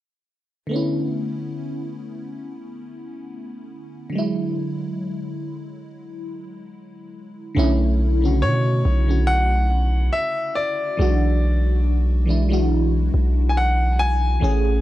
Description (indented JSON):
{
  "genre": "contemporary R&B",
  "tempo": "70 BPM",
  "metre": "4/4",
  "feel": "swing 54% on 16ths",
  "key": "B dorian",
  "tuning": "A4 = 440 Hz",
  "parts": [
    { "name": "FM electric piano with soft pad layer", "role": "accompaniment", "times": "0.7-14.8 s", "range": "C#3 to G#4", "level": "-25 LUFS", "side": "equal", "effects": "chorus, phaser" },
    { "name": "long sustained 808-style bass", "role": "bass", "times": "7.6-14.8 s", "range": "A1 to B2", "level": "-18 LUFS", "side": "equal", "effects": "none" },
    { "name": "bright grand piano", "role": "melody", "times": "8.4-14.8 s", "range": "C#5 to G#5", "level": "-24 LUFS", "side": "left 1 dB", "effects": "tape echo" }
  ],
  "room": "small room ambience",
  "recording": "dry, gritty hardware recording",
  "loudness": "-18 LUFS",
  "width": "side -15 dB against mid",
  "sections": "0.7-7.6 A section; 7.6-14.8 B section",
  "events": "none",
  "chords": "0.7 Bm11; 4.1 E9; 7.6 Bm11; 11.0 E9/B"
}